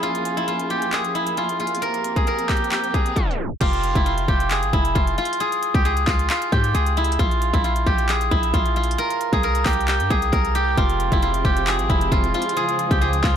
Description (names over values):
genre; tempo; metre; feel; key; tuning
hip hop, trap; 134 BPM; 4/4; half-time; F harmonic minor; A4 = 440 Hz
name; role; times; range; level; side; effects
steel-string zither; melody; 0.0-13.4 s; E4 to Bb4; -21 LUFS; right 1 dB; low-pass filter
dark studio string section; sustained chords; 0.0-3.6, 10.8-13.4 s; Db3 to Ab4; -29 LUFS; equal; none
trap drum kit; drums; 0.0-13.3 s; crash cymbal, handclaps, hi-hat, kick drum; -22 LUFS; equal; none
downlifter and reverse cymbal; sound effects; 2.9-3.6 s; none; -36 LUFS; right 4 dB; none
hard-hitting 808-style bass; bass; 3.6-13.4 s; F1 to Ab2; -23 LUFS; equal; none
room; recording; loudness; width
little or no reverb; blown-out, overdriven recording, overdrive, tape stop; -18 LUFS; side -8 dB against mid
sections
0.0-3.6 A section; 3.6-13.4 B section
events
reverse cymbal 2.9-3.6; tape stop 3.2-3.6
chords
0.0 Bbm7; 1.8 C7sus4; 3.6 Fm; 5.4 Db5; 7.2 Bb5; 9.0 C5; 10.8 Fmadd9; 12.6 Db